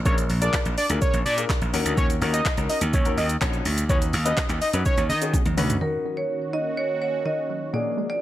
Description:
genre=dance-pop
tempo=125 BPM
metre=4/4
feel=straight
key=Eb minor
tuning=A4 = 439 Hz
part: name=fat analog lead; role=melody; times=0.1-5.2 s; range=Db5 to Eb5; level=-27 LUFS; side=equal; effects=sidechain pumping
part: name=warm baby grand piano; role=accompaniment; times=0.1-8.2 s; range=Bb3 to Db5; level=-31 LUFS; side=left 7 dB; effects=sidechain pumping
part: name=slap bass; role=bass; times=0.1-5.8 s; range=Bb1 to D#3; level=-24 LUFS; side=equal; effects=sidechain pumping
part: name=deep house drum kit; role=drums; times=0.1-5.8 s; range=handclaps, hi-hat, kick drum, shaker, snare drum, toms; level=-24 LUFS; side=equal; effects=none
part: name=marimba with medium hard mallets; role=melody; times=5.8-8.2 s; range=Bb4 to Eb5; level=-26 LUFS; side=right 1 dB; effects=none
part: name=sweeping resonant pad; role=sustained chords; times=6.1-8.2 s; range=Eb3 to Ab4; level=-32 LUFS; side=equal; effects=chorus, sidechain pumping
part: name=wide unison pluck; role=arpeggios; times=5.8-8.2 s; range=Bb2 to Gb5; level=-33 LUFS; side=right 2 dB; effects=auto-pan, sidechain pumping
room=little or no reverb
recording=none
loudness=-21 LUFS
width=side -13 dB against mid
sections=0.0-5.8 A section; 5.8-8.2 B section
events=drop 0.0-5.8; drum fill 5.3-5.8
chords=0.1 Bb7; 1.7 Ebm7; 3.9 Badd9/D#; 5.8 Ebm7

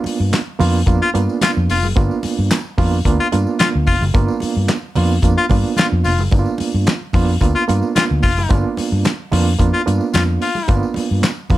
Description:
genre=funk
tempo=110 BPM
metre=4/4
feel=straight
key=unclear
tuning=A4 = 440 Hz
part: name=overdriven reed electric piano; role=stabs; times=0.0-11.6 s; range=A#3 to F4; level=-20 LUFS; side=right 5 dB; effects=fast tremolo
part: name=congas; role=percussion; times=0.0-11.6 s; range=none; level=-26 LUFS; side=right 3 dB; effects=none
part: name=vintage muted fingered electric bass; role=bass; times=0.1-11.6 s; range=F1 to G2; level=-17 LUFS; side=equal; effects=none
part: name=damped 70s drum kit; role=drums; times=0.1-11.6 s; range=handclaps, hi-hat, kick drum, snare drum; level=-19 LUFS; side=left 1 dB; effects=none
part: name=tambourine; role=percussion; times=0.1-11.6 s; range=none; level=-39 LUFS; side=left 6 dB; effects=none
part: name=breathy baritone saxophone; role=second line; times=1.0-10.8 s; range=F4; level=-19 LUFS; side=left 4 dB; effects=none
room=light reverb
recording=dark, warm production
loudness=-14 LUFS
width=side -15 dB against mid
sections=0.0-11.6 A section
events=none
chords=0.0 G7#9

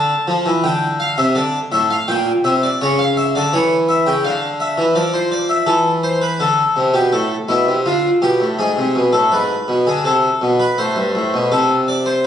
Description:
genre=classical, baroque-style two-part invention for harpsichord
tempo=83 BPM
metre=4/4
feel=straight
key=D minor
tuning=A4 = 440 Hz
part: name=harpsichord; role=solo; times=0.0-12.3 s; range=G2 to A5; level=-14 LUFS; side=equal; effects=none
room=wet recital hall reverb, RT60 1.5 s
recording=recorded on a phone in the room, club reverb, compression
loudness=-14 LUFS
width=side -9 dB against mid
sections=0.0-11.5 A section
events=none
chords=0.0 Dm; 1.4 Em7b5; 2.8 C#dim; 4.2 Dm; 5.7 Am/E; 7.1 Bm7b5/A; 8.6 G#dim; 10.0 Am; 11.5 F/C (rootless)

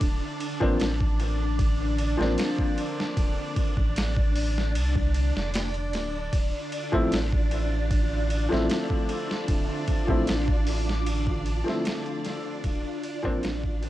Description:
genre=trip hop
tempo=76 BPM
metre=4/4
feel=straight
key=unclear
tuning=A4 = 440 Hz
part: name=string machine, cellos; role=sustained chords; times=0.0-13.9 s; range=D4 to D5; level=-32 LUFS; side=equal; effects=phaser, ensemble chorus, vintage 12-bit sampler grit, cassette tape
part: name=soft dub sub bass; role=bass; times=0.0-13.9 s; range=D1 to C2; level=-28 LUFS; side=equal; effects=none
part: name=boom bap sampler-style drum kit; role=drums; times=0.0-13.9 s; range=hi-hat, kick drum, ride cymbal, snare drum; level=-28 LUFS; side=equal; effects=overdrive, vintage 12-bit sampler grit, cassette tape
part: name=dark upright piano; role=accompaniment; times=0.6-13.5 s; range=F3 to E4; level=-29 LUFS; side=left 1 dB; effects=harmonic tremolo, cassette tape, tape echo
part: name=flickering grainy texture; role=texture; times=6.6-13.9 s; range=F4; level=-40 LUFS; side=right 2 dB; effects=built-in reverb, cassette tape
room=digital ambience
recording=home recording on cassette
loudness=-24 LUFS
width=side -15 dB against mid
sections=0.0-13.9 A section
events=fade-out 10.5-13.9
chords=0.0 Bbadd9/D; 6.3 Dm7; 12.6 Bbadd9/D

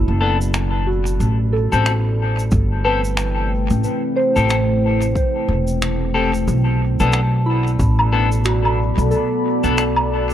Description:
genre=ambient dub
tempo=91 BPM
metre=4/4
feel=swing 59% on 16ths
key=A dorian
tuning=A4 = 440 Hz
part: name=deep dark ambient pad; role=sustained chords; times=0.0-10.3 s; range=A3 to B5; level=-24 LUFS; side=equal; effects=chorus, built-in reverb
part: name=soft synth bell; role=arpeggios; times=0.0-10.3 s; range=E4 to B5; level=-25 LUFS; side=right 1 dB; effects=chorus, dub echo
part: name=upright bass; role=bass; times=0.0-10.3 s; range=E1 to B1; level=-18 LUFS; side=equal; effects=none
part: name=clean electric guitar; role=stabs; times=0.2-9.8 s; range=B3 to A4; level=-24 LUFS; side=left 5 dB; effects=lush chorus, dub echo
part: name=shaker, finger snaps and woodblock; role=drums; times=0.4-10.3 s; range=none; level=-25 LUFS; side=equal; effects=dub echo
part: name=electronic kick drum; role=drums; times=2.5-8.0 s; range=none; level=-21 LUFS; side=equal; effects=none
room=moderate spring reverb, RT60 2.1 s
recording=none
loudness=-16 LUFS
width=side -10 dB against mid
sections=0.0-10.3 A section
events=none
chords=0.0 Bm7; 1.2 Am7; 6.5 Bm7

